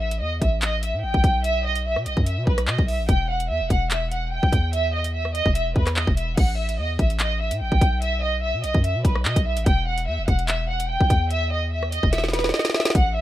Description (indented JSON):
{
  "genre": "hip hop, drill",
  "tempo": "146 BPM",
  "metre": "4/4",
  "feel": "half-time",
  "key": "unclear",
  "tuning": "A4 = 437 Hz",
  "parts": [
    { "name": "rich studio violin section", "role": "melody", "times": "0.0-13.2 s", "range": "B4 to G5", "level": "-25 LUFS", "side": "right 1 dB", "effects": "low-pass filter" },
    { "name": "hard-hitting 808-style bass", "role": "bass", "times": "0.0-13.2 s", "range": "E1 to B2", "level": "-25 LUFS", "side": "equal", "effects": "none" },
    { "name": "drill drum kit", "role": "drums", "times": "0.1-13.1 s", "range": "crash cymbal, handclaps, hi-hat, kick drum, rim click, snare drum", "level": "-21 LUFS", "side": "equal", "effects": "none" }
  ],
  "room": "little or no reverb",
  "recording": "rough home demo mix",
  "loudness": "-20 LUFS",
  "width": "side -14 dB against mid",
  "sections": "0.0-6.4 A section; 6.4-13.2 B section",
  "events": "drum fill 12.1-12.9",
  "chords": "0.0 A5; 1.4 B5; 3.1 N.C.; 6.4 A5; 8.0 B5; 9.7 N.C."
}